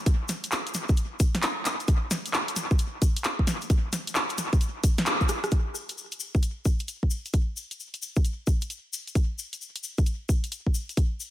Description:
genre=UK garage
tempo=132 BPM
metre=4/4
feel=swing 65% on 16ths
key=none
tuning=none
part: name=electronic kick drum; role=drums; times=0.1-11.1 s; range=none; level=-23 LUFS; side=equal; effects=none
part: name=garage drum kit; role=drums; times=0.1-11.1 s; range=handclaps, hi-hat, rim click, snare drum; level=-28 LUFS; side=equal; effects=analog delay
part: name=tube shaker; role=percussion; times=0.1-11.3 s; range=none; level=-37 LUFS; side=left 5 dB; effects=analog delay
room=light reverb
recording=echo-heavy mix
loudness=-25 LUFS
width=side -14 dB against mid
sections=0.0-5.5 A section; 5.5-11.3 B section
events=band accent 5.1; drum fill 5.3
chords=none

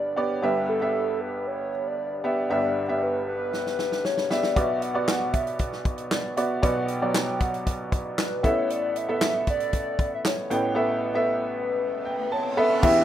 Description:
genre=piano-driven pop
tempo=116 BPM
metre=4/4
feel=straight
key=unclear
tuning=A4 = 440 Hz
part: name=hollow clarinet-like synth lead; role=melody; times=0.0-13.0 s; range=A4 to G5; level=-28 LUFS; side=left 1 dB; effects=chorus, phaser, plate reverb
part: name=clear upright piano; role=accompaniment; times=0.0-13.0 s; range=G1 to B5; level=-25 LUFS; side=right 1 dB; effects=plate reverb
part: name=natural country drum kit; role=drums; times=3.5-13.0 s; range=crash cymbal, handclaps, hi-hat, kick drum, snare drum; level=-26 LUFS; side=equal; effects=none
part: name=riser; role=sound effects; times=11.6-12.8 s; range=none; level=-36 LUFS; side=left 1 dB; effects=none
room=moderate studio reverb, RT60 0.7 s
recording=rough home demo mix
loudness=-23 LUFS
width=side -11 dB against mid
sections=0.0-12.8 A section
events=drum fill 3.5-4.6; riser 11.6-12.8; upright piano fill 11.8-12.8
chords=0.4 Em/G; 4.6 Bm; 8.4 Asus2

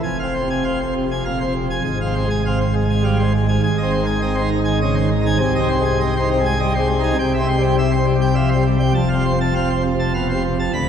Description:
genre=classical, organ toccata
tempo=101 BPM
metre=3/4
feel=straight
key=F minor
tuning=A4 = 440 Hz
part: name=pipe organ, plenum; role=solo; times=0.0-10.9 s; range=D1 to B5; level=-16 LUFS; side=equal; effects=none
room=wet cathedral reverb, RT60 5.5 s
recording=heard from further back in the room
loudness=-16 LUFS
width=side -8 dB against mid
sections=0.0-10.9 A section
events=none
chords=0.0 Fm; 1.8 Fm/Ab; 3.6 Ab; 5.4 Ab/C; 7.2 C; 8.9 F

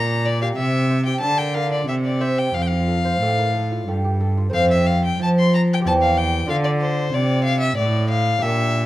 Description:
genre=classical, baroque-style sonata movement with continuo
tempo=93 BPM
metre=3/4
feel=rubato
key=F major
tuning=A4 = 438 Hz
part: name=warm violin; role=melody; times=0.0-8.9 s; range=C5 to C6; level=-23 LUFS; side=left 3 dB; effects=none
part: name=lute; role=accompaniment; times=0.0-8.9 s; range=E2 to D5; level=-24 LUFS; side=right 2 dB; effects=none
part: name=rich cello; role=bass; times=0.0-8.9 s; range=E2 to F3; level=-20 LUFS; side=right 1 dB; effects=none
room=moderate recital hall reverb, RT60 1.4 s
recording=none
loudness=-17 LUFS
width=side -15 dB against mid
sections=0.0-4.5 A section; 4.5-8.9 B section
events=none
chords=0.0 Gm/Bb; 0.6 C; 1.2 Bb/D; 1.9 C5; 2.5 F; 5.8 C/E; 6.5 Dm

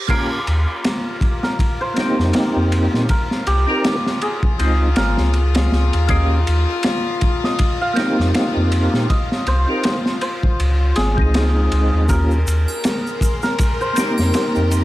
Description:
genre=trip hop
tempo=80 BPM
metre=4/4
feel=swing 57% on 16ths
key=unclear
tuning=A4 = 440 Hz
part: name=santur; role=melody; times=0.0-14.8 s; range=G4 to F5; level=-25 LUFS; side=equal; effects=dub echo
part: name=percussive tonewheel organ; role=accompaniment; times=0.1-14.8 s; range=Ab3 to Bb4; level=-22 LUFS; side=equal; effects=chorus vibrato, slow rotary speaker, tremolo, vintage 12-bit sampler grit, tape echo
part: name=rich chamber string section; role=sustained chords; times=0.1-14.8 s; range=F4 to Bb4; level=-27 LUFS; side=left 4 dB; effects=none
part: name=crunchy breakbeat drum kit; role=drums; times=0.1-14.8 s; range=crash cymbal, kick drum, ride cymbal, snare drum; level=-20 LUFS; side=equal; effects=none
part: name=warm sub bass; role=bass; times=0.5-14.8 s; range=Ab1 to Bb2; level=-17 LUFS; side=equal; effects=none
part: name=tube shaker and triangle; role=percussion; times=12.1-14.8 s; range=none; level=-32 LUFS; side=right 3 dB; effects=none
part: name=backwards swelling texture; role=texture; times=13.1-14.8 s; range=C6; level=-35 LUFS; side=right 3 dB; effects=built-in reverb
room=studio reverb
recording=dry, gritty hardware recording, vinyl crackle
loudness=-15 LUFS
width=side -16 dB against mid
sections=0.1-14.8 A section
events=none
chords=0.1 Eb7; 1.6 F7sus4; 3.1 Cm7; 4.6 Dbmaj7; 6.1 Eb7; 7.6 F7sus4; 9.1 Cm7; 10.6 Dbmaj7; 12.1 Eb7; 13.6 F7sus4

